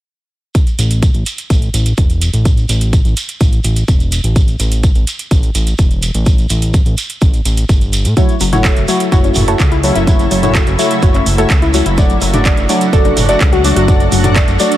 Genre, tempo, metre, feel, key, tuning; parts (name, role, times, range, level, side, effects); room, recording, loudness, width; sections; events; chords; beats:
progressive house; 126 BPM; 4/4; straight; A major; A4 = 440 Hz
electronic kick drum; drums; 0.5-14.5 s; -11 LUFS; equal
house drum kit; drums; 0.5-14.8 s; handclaps, hi-hat; -21 LUFS; right 2 dB
shekere; percussion; 0.6-14.8 s; -24 LUFS; right 3 dB
fat analog bass; bass; 0.8-14.6 s; E1 to A2; -15 LUFS; equal; sidechain pumping
shimmering ambient pad; sustained chords; 8.9-14.8 s; C#3 to F#4; -20 LUFS; right 1 dB; chorus, built-in reverb, sidechain pumping
soft round pluck; arpeggios; 8.2-14.6 s; F#3 to D5; -18 LUFS; left 1 dB; chorus, sidechain pumping, ping-pong delay
deep mellow chord stab; stabs; 8.2-14.8 s; A3 to D5; -17 LUFS; left 2 dB; chorus, sidechain pumping, ping-pong delay
electronic congas and toms; percussion; 8.2-14.3 s; -20 LUFS; equal; sidechain pumping on perc, sidechain pumping on toms
little or no reverb; -10 LUFS; side -14 dB against mid
0.5-14.8 A section
0.5 A5; 8.2 F#m7; 12.0 D/F#
| 0.55 1.03 1.50 1.98 | 2.45 2.93 3.41 3.88 | 4.36 4.83 5.31 5.79 | 6.26 6.74 7.22 7.69 | 8.17 8.64 9.12 9.60 | 10.07 10.55 11.03 11.50 | 11.98 12.45 12.93 13.41 | 13.88 14.36